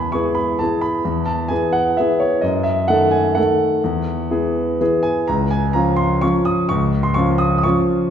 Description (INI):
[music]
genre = classical, piano waltz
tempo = 128 BPM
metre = 3/4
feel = uneven beats, rubato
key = unclear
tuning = A4 = 442 Hz
[part]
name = clear grand piano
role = solo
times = 0.0-8.1 s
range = Db2 to Eb6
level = -16 LUFS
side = equal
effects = none
[sound]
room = wet recital hall reverb, RT60 1.7 s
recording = heard from further back in the room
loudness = -16 LUFS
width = side -8 dB against mid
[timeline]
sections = 0.0-8.1 A section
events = none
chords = 0.0 E; 2.4 D#dim/F#; 3.8 E; 5.3 Db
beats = 0.14 0.61 | 1.05 1.51 1.99 | 2.44 2.90 3.38 | 3.85 4.32 4.80 | 5.29 5.75 6.23 | 6.70 7.16 7.64